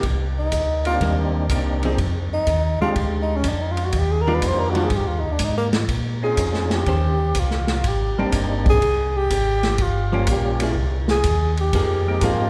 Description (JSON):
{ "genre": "soul jazz organ trio", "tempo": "123 BPM", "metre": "4/4", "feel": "swing 68% on 8ths", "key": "C minor", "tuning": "A4 = 444 Hz", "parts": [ { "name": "archtop guitar, miked and amplified", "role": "accompaniment", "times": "0.0-12.5 s", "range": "Eb3 to C5", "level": "-29 LUFS", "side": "equal", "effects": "none" }, { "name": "mellow tonewheel organ", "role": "bass", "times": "0.0-12.5 s", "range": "G1 to Bb2", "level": "-25 LUFS", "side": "equal", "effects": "overdrive, chorus vibrato, slow rotary speaker" }, { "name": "warm soul drum kit", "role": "drums", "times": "0.0-12.4 s", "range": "hi-hat, kick drum, ride cymbal, snare drum", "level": "-28 LUFS", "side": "equal", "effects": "none" }, { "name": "breathy tenor saxophone", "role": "melody", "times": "0.4-12.5 s", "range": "Bb3 to C5", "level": "-26 LUFS", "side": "equal", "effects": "none" }, { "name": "percussive tonewheel organ", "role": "melody", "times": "0.9-12.5 s", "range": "G3 to Ab4", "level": "-30 LUFS", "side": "equal", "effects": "overdrive, chorus vibrato, stopped rotary speaker" } ], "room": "moderate concert hall reverb, RT60 1.9 s", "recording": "recorded in a church or concert hall", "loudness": "-21 LUFS", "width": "mono", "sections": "0.0-12.5 A section", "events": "tenor saxophone solo 0.0-12.5", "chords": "0.0 Cm7; 2.0 Fm7; 3.0 Fm13/D; 3.9 Ebmaj9; 5.9 Bbm11; 6.9 Eb13; 7.8 Abmaj9#11; 9.8 Gm7b5; 10.8 Cm; 11.7 Fm11" }